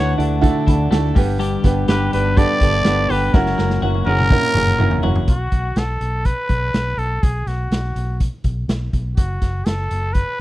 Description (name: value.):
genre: jangly indie pop.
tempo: 123 BPM.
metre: 4/4.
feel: straight.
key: unclear.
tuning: A4 = 440 Hz.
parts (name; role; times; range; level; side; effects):
growling trumpet; melody; 0.0-10.4 s; F#4 to D5; -22 LUFS; right 1 dB; none.
warm upright piano; accompaniment; 0.0-5.3 s; B3 to B5; -22 LUFS; right 7 dB; none.
twelve-string electric guitar; arpeggios; 0.0-5.8 s; F#2 to G4; -22 LUFS; left 6 dB; slapback echo.
vintage muted fingered electric bass; bass; 0.0-10.2 s; F#1 to D2; -21 LUFS; equal; none.
raw garage drum kit; drums; 0.2-10.3 s; hi-hat, kick drum, snare drum, toms; -18 LUFS; equal; none.
room: little or no reverb.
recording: dry, close 1970s-style studio recording.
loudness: -16 LUFS.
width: side -16 dB against mid.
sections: 0.0-5.3 A section; 5.3-10.4 B section.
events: upright piano fill 0.4-1.4; drum fill 3.3-5.3.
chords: 0.0 Dadd9; 1.2 G; 3.3 F#7; 5.3 B5; 9.2 F#m.